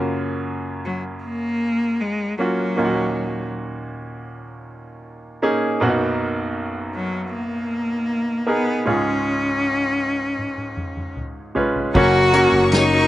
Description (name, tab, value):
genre	pop ballad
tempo	78 BPM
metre	4/4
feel	straight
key	unclear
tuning	A4 = 440 Hz
part	bright baby grand piano	accompaniment	0.0-13.1 s	B1 to B4	-22 LUFS	right 1 dB	none
part	clear cello	melody	0.9-13.1 s	F#3 to Gb4	-21 LUFS	left 1 dB	none
part	soft-mallet drum kit	drums	10.4-12.9 s	crash cymbal, hi-hat, kick drum, snare drum, toms	-26 LUFS	equal	none
part	rich studio string section	sustained chords	11.9-13.1 s	Gb3 to Db6	-23 LUFS	left 3 dB	none
part	nylon-string guitar	arpeggios	11.9-13.1 s	Gb2 to Gb4	-26 LUFS	left 6 dB	none
part	fretless electric bass	bass	11.9-13.1 s	Gb1	-22 LUFS	equal	none
room	little or no reverb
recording	recorded outdoors, with no room sound, nothing above 10.8 kHz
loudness	-19 LUFS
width	side -14 dB against mid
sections	0.0-11.9 A section; 11.9-13.1 B section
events	drum fill 10.4-11.9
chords	0.0 F#maj7; 2.8 D#m7; 5.8 Bmaj7; 8.9 C#; 11.9 Gb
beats	0.46 1.23 2.00 | 2.76 3.53 4.29 5.05 | 5.81 6.57 7.33 8.09 | 8.86 9.62 10.39 11.17 | 11.95 12.72